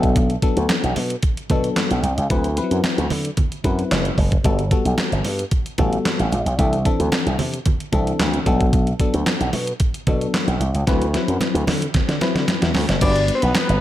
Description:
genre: early-eighties boogie funk.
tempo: 112 BPM.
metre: 4/4.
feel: straight.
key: G major.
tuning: A4 = 440 Hz.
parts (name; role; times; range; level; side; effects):
FM electric piano; accompaniment; 0.0-13.5 s; E3 to E5; -24 LUFS; left 3 dB; chorus.
slap bass with an envelope filter; bass; 0.0-13.8 s; F#1 to D3; -21 LUFS; equal; none.
crisp 8-bit digital drum machine; drums; 0.0-13.8 s; crash cymbal, handclaps, hi-hat, kick drum, snare drum; -21 LUFS; equal; gated reverb.
congas; percussion; 0.2-13.7 s; none; -28 LUFS; right 3 dB; none.
fat analog lead; melody; 13.0-13.8 s; B4 to D5; -21 LUFS; left 1 dB; slapback echo.
warm studio string section; sustained chords; 13.0-13.8 s; G3 to B4; -28 LUFS; right 1 dB; none.
room: digital ambience.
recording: none.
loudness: -17 LUFS.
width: side -13 dB against mid.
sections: 0.0-13.0 A section.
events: FM electric piano fill 0.0; drum fill 10.9-13.0.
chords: 0.0 Bm7; 2.3 D13; 4.4 Gmaj9; 6.6 C69; 8.5 Bm7; 10.9 D13; 13.0 Gmaj7.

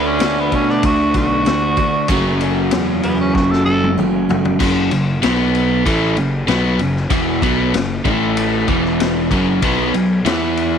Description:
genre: classic rock.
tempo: 96 BPM.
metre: 4/4.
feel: straight.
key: F# minor.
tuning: A4 = 440 Hz.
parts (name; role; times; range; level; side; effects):
raspy tenor saxophone; melody; 0.0-4.0 s; B3 to A4; -20 LUFS; right 1 dB; slapback echo.
picked steel-string acoustic guitar; accompaniment; 0.0-4.6 s; F#2 to F#4; -28 LUFS; right 10 dB; none.
overdriven electric guitar; riff; 0.0-10.8 s; E2 to E4; -16 LUFS; equal; none.
fuzz picked electric bass; bass; 0.0-10.8 s; E1 to B2; -22 LUFS; equal; overdrive.
vintage drum kit; drums; 0.2-10.7 s; crash cymbal, kick drum, ride cymbal, snare drum, toms; -22 LUFS; left 3 dB; none.
room: light reverb, small room ambience.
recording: 1960s-style stereo.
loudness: -14 LUFS.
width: side -7 dB against mid.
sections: 0.0-4.6 A section; 4.6-10.8 B section.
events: tenor saxophone solo 0.0-4.6; drum fill 3.3-4.6.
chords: 0.0 Dadd9; 2.1 F#m; 4.6 F#5; 5.2 B5; 5.9 F#m; 8.1 A5; 8.7 E5; 9.3 F#5; 9.6 B5; 10.3 E5.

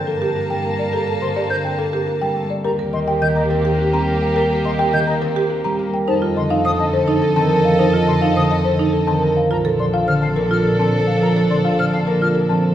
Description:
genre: classical, minimalist pattern music.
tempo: 105 BPM.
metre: 3/4.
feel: straight.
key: unclear.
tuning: A4 = 440 Hz.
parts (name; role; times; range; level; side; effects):
folk marimba with soft mallets; melody; 0.0-12.7 s; G4 to Bb5; -23 LUFS; left 3 dB; none.
warm soprano saxophone; second line; 0.0-12.7 s; G4 to Bb4; -25 LUFS; right 2 dB; none.
concert harp; accompaniment; 0.0-12.7 s; D3 to G4; -20 LUFS; equal; none.
rich studio violin section; sustained chords; 0.0-12.7 s; Bb3 to A5; -27 LUFS; left 3 dB; none.
warm studio double bass section; bass; 0.0-12.7 s; Bb1 to G2; -24 LUFS; right 1 dB; none.
buzzing marimba with medium hard mallets; arpeggios; 0.2-12.7 s; C4 to Eb5; -25 LUFS; right 5 dB; none.
bright silver concert flute; arpeggios; 0.9-12.3 s; Eb5 to G6; -26 LUFS; left 2 dB; none.
room: wet recital hall reverb, RT60 1.3 s.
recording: recorded in a church or concert hall.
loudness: -15 LUFS.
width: side -11 dB against mid.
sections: 0.0-12.7 A section.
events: none.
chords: 0.0 Gmadd9; 2.6 Eb; 6.1 F7; 9.5 Bbmaj7.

